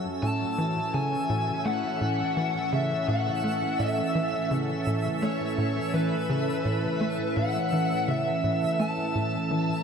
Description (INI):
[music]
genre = ambient, sequencer-driven space music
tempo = 84 BPM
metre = 4/4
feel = straight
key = A major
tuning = A4 = 440 Hz
[part]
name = sweeping resonant pad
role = sustained chords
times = 0.0-9.8 s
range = A2 to E5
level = -29 LUFS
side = right 2 dB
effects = chorus, shimmer reverb
[part]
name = tight sequencer bass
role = riff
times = 0.0-9.7 s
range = A2 to A3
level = -30 LUFS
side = left 1 dB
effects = lush chorus, ping-pong delay
[part]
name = twinkling granular texture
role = texture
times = 0.0-9.8 s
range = E5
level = -38 LUFS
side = equal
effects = built-in reverb, shimmer reverb
[part]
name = bluesy overdriven lead guitar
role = melody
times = 0.2-9.8 s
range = B4 to A5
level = -30 LUFS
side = left 2 dB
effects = distortion, shimmer reverb, ping-pong delay
[sound]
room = wet lush hall reverb, RT60 2.8 s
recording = none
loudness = -24 LUFS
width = side -6 dB against mid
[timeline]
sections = 0.0-9.8 A section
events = none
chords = 0.2 A